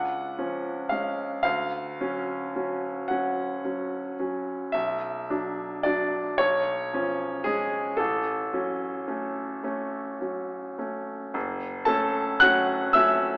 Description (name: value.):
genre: classical, romantic nocturne for solo piano.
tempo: 34-40 BPM (dotted quarters).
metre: 12/8.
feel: rubato.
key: F# minor.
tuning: A4 = 440 Hz.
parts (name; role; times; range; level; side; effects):
clear concert grand piano; solo; 0.0-13.4 s; F#1 to F#6; -24 LUFS; equal; none.
room: moderate concert hall reverb, RT60 1.8 s.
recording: AM radio sound.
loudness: -24 LUFS.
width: side -30 dB against mid.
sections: 0.0-11.4 A section; 11.4-13.4 A section.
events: none.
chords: 0.0 C#; 1.4 Dmaj7; 4.7 Bm; 6.4 C#7/B; 8.0 F#m/A; 11.4 F#m.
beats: 1.44 3.09 | 4.74 6.40 7.99 9.64 | 11.35 12.95.